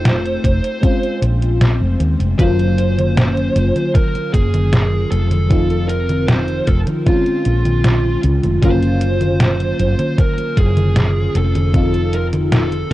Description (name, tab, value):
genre	vaporwave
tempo	77 BPM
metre	4/4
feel	straight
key	Gb lydian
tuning	A4 = 440 Hz
part	fuzz lead guitar	melody	0.0-12.9 s	F4 to C5	-22 LUFS	right 2 dB	distortion, vintage 12-bit sampler grit, tape echo
part	FM electric piano with soft pad layer	accompaniment	0.0-12.9 s	F3 to F4	-21 LUFS	left 1 dB	lush chorus
part	woody fretless electric bass	bass	0.0-12.9 s	F1 to Eb2	-17 LUFS	equal	analog chorus
part	detuned 8-bit digital drum machine	drums	0.1-12.9 s	congas, hi-hat, snare drum	-19 LUFS	equal	overdrive
part	electronic kick drum	drums	0.4-12.9 s	none	-16 LUFS	equal	overdrive
room	little or no reverb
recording	cassette tape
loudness	-13 LUFS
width	side -16 dB against mid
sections	0.0-12.9 A section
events	none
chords	0.0 F7; 0.8 Bbm7; 2.4 Gbmaj9; 5.5 F5; 7.1 Bbm7; 8.6 Gbmaj9; 11.7 F5